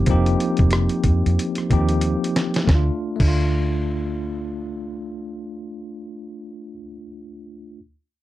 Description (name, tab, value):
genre	R&B, neo-soul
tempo	92 BPM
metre	4/4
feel	swing 61% on 16ths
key	D phrygian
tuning	A4 = 440 Hz
part	bell-like tine electric piano	accompaniment	0.0-7.8 s	F3 to G4	-24 LUFS	left 1 dB	medium stereo tremolo
part	vintage muted fingered electric bass	bass	0.0-6.7 s	F1 to F2	-21 LUFS	equal	none
part	dusty soul sampler-style drum kit	drums	0.1-3.4 s	crash cymbal, hi-hat, kick drum, rim click, snare drum	-21 LUFS	equal	none
room	light reverb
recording	dark, warm production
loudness	-18 LUFS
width	side -15 dB against mid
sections	0.0-2.7 A section; 2.7-5.3 B section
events	drum fill 2.0-2.7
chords	0.0 F9sus4; 2.7 Dm